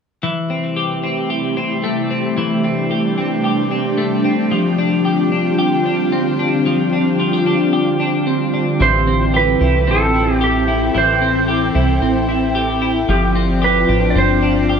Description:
dream pop; 112 BPM; 4/4; straight; A minor; A4 = 440 Hz
ethereal airy pad; sustained chords; 0.7-14.8 s; C3 to G5; -18 LUFS; right 1 dB; ensemble chorus, built-in reverb
twelve-string electric guitar; arpeggios; 0.2-14.8 s; E3 to G4; -18 LUFS; left 3 dB; wide subtle chorus, ping-pong delay
clean lap steel guitar; melody; 8.8-14.8 s; G4 to D5; -18 LUFS; right 4 dB; ping-pong delay
plucky analog bass; bass; 8.8-14.8 s; G1 to C2; -19 LUFS; equal
wet small room reverb, RT60 0.5 s; -14 LUFS; side -6 dB against mid
0.2-8.8 A section; 8.8-14.8 B section
0.2 Am7; 4.5 G7sus4; 8.8 Am7; 13.1 G7sus4

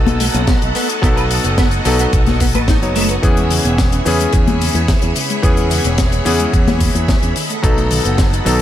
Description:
nu-disco, nu disco; 109 BPM; 4/4; straight; E major; A4 = 440 Hz
warm electric grand piano; accompaniment; 0.0-8.6 s; E3 to C#5; -19 LUFS; left 1 dB; ping-pong delay
string machine, full ensemble; sustained chords; 0.0-8.6 s; G#4 to C#6; -23 LUFS; equal; ensemble chorus, sidechain pumping
picked electric bass with an envelope filter; bass; 0.0-8.6 s; E1 to E2; -18 LUFS; equal; sidechain pumping
deep reggae drum kit; drums; 0.1-8.6 s; hi-hat, snare drum; -22 LUFS; left 3 dB; small room ambience
congas and maracas; percussion; 0.1-8.6 s; -22 LUFS; left 5 dB
clean electric guitar; riff; 0.2-3.1 s; A3 to B4; -22 LUFS; right 2 dB; ensemble chorus, vintage 12-bit sampler grit, ping-pong delay
electronic kick drum; drums; 0.5-8.3 s; -16 LUFS; equal; overdrive, small room ambience
soft round pluck; arpeggios; 3.2-8.6 s; C#3 to D#4; -25 LUFS; left 1 dB
small room ambience; -12 LUFS; side -12 dB against mid
0.0-8.6 A section
0.0 B7; 3.2 E6; 7.4 B7

